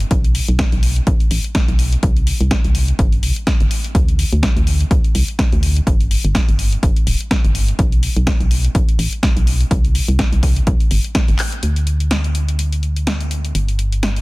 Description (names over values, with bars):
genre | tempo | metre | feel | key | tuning
piano house | 125 BPM | 4/4 | swing 56% on 16ths | unclear | A4 = 440 Hz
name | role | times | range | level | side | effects
organ-like FM bass | bass | 0.0-14.2 s | D1 to D2 | -17 LUFS | equal | sidechain pumping
house drum kit | drums | 0.0-14.2 s | handclaps, hi-hat, snare drum | -23 LUFS | left 1 dB | none
electronic kick drum | drums | 0.1-11.3 s | none | -16 LUFS | equal | none
room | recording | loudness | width
little or no reverb | dense, heavily limited modern master | -14 LUFS | side -22 dB against mid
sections
0.0-11.6 A section; 11.6-14.2 B section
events
drum fill 11.4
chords
none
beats
| 0.11 0.59 1.07 1.55 | 2.03 2.51 2.99 3.47 | 3.95 4.43 4.91 5.39 | 5.87 6.35 6.83 7.31 | 7.79 8.27 8.75 9.23 | 9.71 10.19 10.67 11.15 | 11.63 12.11 12.59 13.07 | 13.55 14.03